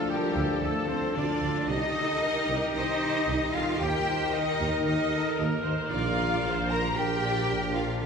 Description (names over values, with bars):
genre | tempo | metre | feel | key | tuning
cinematic, epic orchestral film score | 114 BPM | 4/4 | straight | Bb major | A4 = 441 Hz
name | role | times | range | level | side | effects
warm symphonic violin section | melody | 0.0-8.1 s | G4 to Bb5 | -35 LUFS | left 4 dB | none
rich symphonic violin section | second line | 0.0-8.1 s | G4 to Bb5 | -36 LUFS | left 3 dB | none
silver concert flute | second line | 0.0-8.1 s | G4 to Bb5 | -34 LUFS | left 2 dB | none
rich symphonic viola section | accompaniment | 0.0-8.1 s | F4 to D5 | -36 LUFS | right 2 dB | none
mellow French horn section | sustained chords | 0.0-8.1 s | Eb3 to Eb4 | -34 LUFS | left 2 dB | none
clear trumpet | stabs | 0.0-8.1 s | G4 to Bb4 | -35 LUFS | right 1 dB | none
rich symphonic cello section | bass | 0.0-8.1 s | G3 to Bb4 | -32 LUFS | right 2 dB | none
warm symphonic double bass section | bass | 0.4-8.1 s | Bb1 to Eb2 | -35 LUFS | right 2 dB | none
warm tuba | bass | 0.4-8.1 s | Bb1 to Eb2 | -34 LUFS | right 2 dB | none
room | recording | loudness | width
wet church reverb, RT60 3.4 s | recorded in a church or concert hall | -25 LUFS | side -6 dB against mid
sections
0.0-8.1 A section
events
none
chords
0.0 Dm; 1.7 Cm; 3.8 Eb; 5.9 Bb